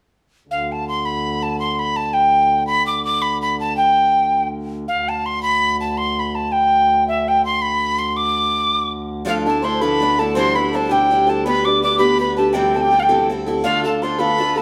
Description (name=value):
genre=celtic folk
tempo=109 BPM (dotted quarters)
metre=6/8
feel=straight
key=D dorian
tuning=A4 = 440 Hz
part: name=wooden whistle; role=melody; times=0.5-14.6 s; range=E5 to D6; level=-20 LUFS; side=equal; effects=none
part: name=hand-pumped harmonium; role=drone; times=0.5-14.6 s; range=D2 to D3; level=-29 LUFS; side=equal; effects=none
part: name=picked steel-string acoustic guitar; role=accompaniment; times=9.2-14.6 s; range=C3 to C5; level=-22 LUFS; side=equal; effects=none
part: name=mellow accordion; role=second line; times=9.3-14.6 s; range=F4 to D5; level=-26 LUFS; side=equal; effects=none
room=wet stone room reverb, RT60 1.0 s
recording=band playing live in one room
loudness=-18 LUFS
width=mono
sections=0.5-9.3 A section; 9.3-14.6 A section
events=none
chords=0.5 N.C.; 9.3 Dmadd9; 10.4 Cadd9; 11.4 G; 12.5 C6; 13.6 Dm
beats=| 0.49 1.04 | 1.58 2.13 | 2.68 3.23 | 3.77 4.32 | 4.87 5.42 | 5.96 6.51 | 7.06 7.61 | 8.16 8.71 | 9.26 9.80 | 10.35 10.90 | 11.45 12.00 | 12.55 13.10 | 13.64 14.19